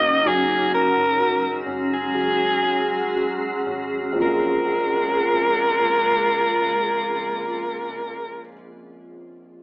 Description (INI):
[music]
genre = pop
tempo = 57-66 BPM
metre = 4/4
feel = straight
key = Bb minor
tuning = A4 = 439 Hz
[part]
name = raspy soprano saxophone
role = melody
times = 0.0-8.5 s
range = Ab4 to Eb5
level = -20 LUFS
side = equal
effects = none
[part]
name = felt-muted upright piano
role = accompaniment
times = 0.0-9.6 s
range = Bb1 to Ab4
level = -27 LUFS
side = equal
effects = none
[part]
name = granular cloud pad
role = sustained chords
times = 0.0-8.5 s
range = Db3 to Ab4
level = -26 LUFS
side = equal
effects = built-in reverb
[part]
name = vintage muted fingered electric bass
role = bass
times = 0.0-8.4 s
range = F1 to Bb1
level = -46 LUFS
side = equal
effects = none
[sound]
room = moderate studio reverb, RT60 0.8 s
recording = band playing live in one room, telephone sound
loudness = -18 LUFS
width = side -25 dB against mid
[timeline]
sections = 0.0-4.2 A section; 4.2-8.3 B section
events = slowing down 0.0-4.2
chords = 0.3 Gbsus2; 4.2 Bbm7